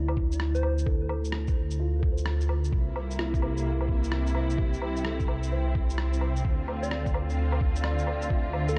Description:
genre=future garage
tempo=129 BPM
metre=4/4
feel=swing 64% on 16ths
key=D minor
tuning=A4 = 440 Hz
part: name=felt-muted upright piano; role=accompaniment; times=0.0-8.8 s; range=D4 to E5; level=-39 LUFS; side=equal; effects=sidechain pumping, tape echo
part: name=dark detuned saw bass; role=bass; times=0.0-8.8 s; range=C2 to D2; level=-30 LUFS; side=equal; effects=sidechain pumping
part: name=electronic woodblock, shaker and rim click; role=drums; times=0.1-8.8 s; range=none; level=-40 LUFS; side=equal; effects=vintage 12-bit sampler grit
part: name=electronic kick drum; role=drums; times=0.2-8.4 s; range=none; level=-30 LUFS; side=equal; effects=vintage 12-bit sampler grit
part: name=soft struck synth lead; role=melody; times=0.5-0.9, 6.8-8.8 s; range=A4 to D5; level=-40 LUFS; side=equal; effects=chorus, tremolo, delay
part: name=rich symphonic string section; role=sustained chords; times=2.7-8.8 s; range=C3 to F4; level=-36 LUFS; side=equal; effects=vintage 12-bit sampler grit, sidechain pumping
room=moderate plate reverb, RT60 2.7 s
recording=dreamy mix soaked in reverb, cassette tape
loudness=-28 LUFS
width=mono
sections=0.0-8.8 A section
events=none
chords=0.0 Dm7; 2.7 C7; 6.4 Dm7

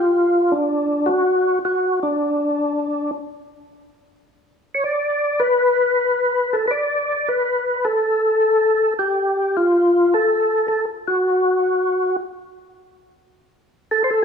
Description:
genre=jazz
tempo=106 BPM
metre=4/4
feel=swing 67% on 8ths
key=unclear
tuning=A4 = 439 Hz
part: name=percussive tonewheel organ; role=solo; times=0.0-14.2 s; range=D4 to D5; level=-17 LUFS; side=left 1 dB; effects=slow rotary speaker, overdrive, chorus vibrato
room=light reverb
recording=rough home demo mix, studio reverb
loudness=-17 LUFS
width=side -6 dB against mid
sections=0.0-14.2 A section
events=none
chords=none

